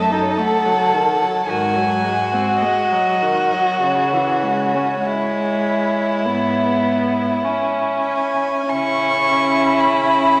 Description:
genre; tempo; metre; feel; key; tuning
classical, slow romantic movement for string quartet; 45-58 BPM; 4/4; rubato; C# minor; A4 = 440 Hz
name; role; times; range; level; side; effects
warm violin; melody; 0.0-10.4 s; C#5 to C#6; -25 LUFS; equal; none
rich violin; second line; 0.0-10.4 s; E4 to A4; -21 LUFS; equal; none
rich viola; accompaniment; 0.0-10.4 s; C#3 to D#4; -24 LUFS; equal; none
warm cello; bass; 0.0-10.4 s; F#2 to C#3; -29 LUFS; equal; none
room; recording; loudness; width
wet scoring stage reverb, RT60 2.0 s; none; -18 LUFS; mono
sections
0.0-8.7 A section; 8.7-10.4 B section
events
none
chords
0.0 D#dim/F#; 1.5 G#7; 3.8 C#m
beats
0.40 1.50 2.62 | 3.82 5.04 6.25 7.44 | 8.70 9.80

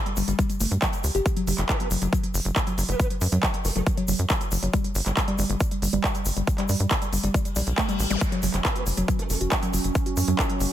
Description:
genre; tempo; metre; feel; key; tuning
psychedelic trance; 138 BPM; 4/4; straight; F# phrygian; A4 = 440 Hz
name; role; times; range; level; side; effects
woody wave-folded pluck; riff; 0.1-10.5 s; F#3 to G4; -29 LUFS; moving between left 4 dB and right 4 dB; chorus, auto-pan, sidechain pumping, tape echo
techno drum kit; drums; 0.1-10.7 s; handclaps, hi-hat; -29 LUFS; right 1 dB; none
tight sequencer bass; bass; 0.2-10.7 s; F#1 to G2; -25 LUFS; equal; tube saturation
egg shaker; percussion; 0.2-10.7 s; none; -36 LUFS; left 3 dB; none
electronic kick drum; drums; 0.4-10.5 s; none; -25 LUFS; equal; overdrive
formant-sweep wobble bass; second line; 1.7-3.8, 8.6-9.4 s; A3 to B3; -36 LUFS; right 4 dB; analog chorus, sidechain pumping, high-pass filter, tape echo
reverse cymbal and zap; sound effects; 7.6-8.2 s; none; -34 LUFS; left 3 dB; none
overtone-sweeping drone; sustained chords; 8.6-10.7 s; F#3 to C#4; -31 LUFS; right 4 dB; chorus, built-in reverb, sidechain pumping
room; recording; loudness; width
digital ambience; none; -22 LUFS; side -12 dB against mid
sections
0.0-10.7 A section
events
reverse cymbal 7.6-8.2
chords
0.0 G5; 1.3 N.C.; 8.2 F#5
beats
0.39 0.82 | 1.26 1.69 2.13 2.56 | 3.00 3.43 3.87 4.30 | 4.74 5.17 5.60 6.04 | 6.47 6.91 7.34 7.78 | 8.21 8.65 9.08 9.52 | 9.95 10.39

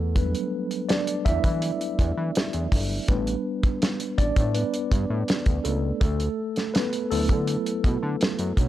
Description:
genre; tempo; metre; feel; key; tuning
contemporary R&B; 82 BPM; 4/4; straight; unclear; A4 = 440 Hz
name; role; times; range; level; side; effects
mellow tine electric piano; accompaniment; 0.0-8.7 s; F#3 to E5; -27 LUFS; equal; medium stereo tremolo
fat analog bass; bass; 0.0-8.7 s; G1 to E3; -27 LUFS; equal; none
warm soul drum kit; drums; 0.2-8.7 s; hi-hat, kick drum, snare drum; -24 LUFS; equal; none
room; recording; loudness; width
studio reverb; dry, gritty hardware recording, transformer saturation, cassette tape; -22 LUFS; side -13 dB against mid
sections
0.0-8.7 A section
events
tine electric piano solo 0.0-8.7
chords
0.0 Em9; 3.1 A9sus4; 6.0 D69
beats
| 0.16 0.89 1.62 2.35 | 3.08 3.82 4.55 5.28 | 6.01 6.74 7.47 8.21

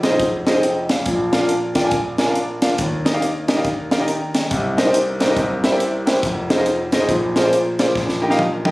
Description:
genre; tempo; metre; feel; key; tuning
uptempo gospel; 139 BPM; 4/4; swing 62% on 8ths; Eb major; A4 = 440 Hz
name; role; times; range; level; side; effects
clear concert grand piano; accompaniment; 0.0-8.7 s; F1 to Bb5; -18 LUFS; equal; none
tight funk drum kit; drums; 0.0-8.7 s; hi-hat, kick drum, snare drum, toms; -22 LUFS; equal; none
room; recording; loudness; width
light reverb; recorded on a phone in the room, studio reverb, compression; -16 LUFS; side -20 dB against mid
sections
0.0-8.7 A section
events
drum fill 8.0-8.7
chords
0.0 Fm7; 1.1 Bb; 2.8 Ebmaj7; 4.5 Cm7; 5.4 C7; 6.2 Fm7; 7.1 Bb7sus2; 8.0 Eb/Bb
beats
0.21 0.64 | 1.07 1.50 1.93 2.36 | 2.79 3.22 3.65 4.08 | 4.51 4.94 5.37 5.80 | 6.23 6.66 7.09 7.53 | 7.96 8.39

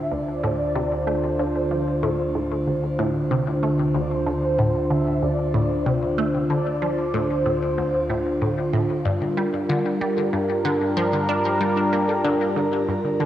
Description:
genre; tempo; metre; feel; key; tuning
ambient, sequencer-driven space music; 94 BPM; 4/4; straight; D minor; A4 = 440 Hz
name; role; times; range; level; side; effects
mellow horn-like synth lead; melody; 0.0-8.7 s; C5 to E5; -28 LUFS; equal; ensemble chorus, shimmer reverb, ping-pong delay
sweeping resonant pad; sustained chords; 0.0-13.3 s; D3 to C5; -23 LUFS; equal; chorus, cassette tape, shimmer reverb
analog drone; bass; 0.3-13.3 s; D2 to G2; -32 LUFS; equal; chorus
resonant blip pluck; riff; 0.1-13.3 s; D2 to D4; -26 LUFS; equal; phaser, cassette tape, shimmer reverb, ping-pong delay
thumb-piano-like synth pluck; arpeggios; 9.2-13.3 s; D3 to A4; -29 LUFS; left 2 dB; chorus, auto-pan, cassette tape, ping-pong delay
room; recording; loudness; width
wet spring reverb, RT60 2.5 s; home recording on cassette; -20 LUFS; side -12 dB against mid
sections
0.0-13.3 A section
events
none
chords
0.0 Dm7; 9.1 Gm7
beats
0.12 0.75 | 1.39 2.03 2.67 3.31 | 3.95 4.58 5.22 5.86 | 6.50 7.14 7.78 8.41 | 9.05 9.69 10.33 10.97 | 11.61 12.24 12.88

